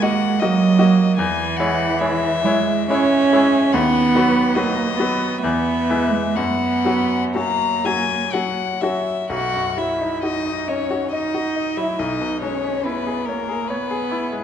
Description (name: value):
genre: classical, slow romantic movement for piano trio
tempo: 60-79 BPM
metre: 3/4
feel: rubato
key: B major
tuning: A4 = 442 Hz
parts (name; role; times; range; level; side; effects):
- rich violin; melody; 0.0-14.4 s; A#4 to A#5; -24 LUFS; left 8 dB; none
- dark cello; second line; 0.0-14.4 s; E3 to F#4; -20 LUFS; right 4 dB; none
- bright grand piano; accompaniment; 0.0-14.4 s; B1 to D#5; -23 LUFS; left 2 dB; none
room: wet recital hall reverb, RT60 1.5 s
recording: nothing above 10.7 kHz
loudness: -17 LUFS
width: side -9 dB against mid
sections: 0.0-9.3 A section; 9.3-14.4 B section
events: none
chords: 0.0 D#m; 1.2 C#m/E; 3.7 B/D#; 5.4 E; 6.4 F#; 9.3 B; 12.0 C#m7/B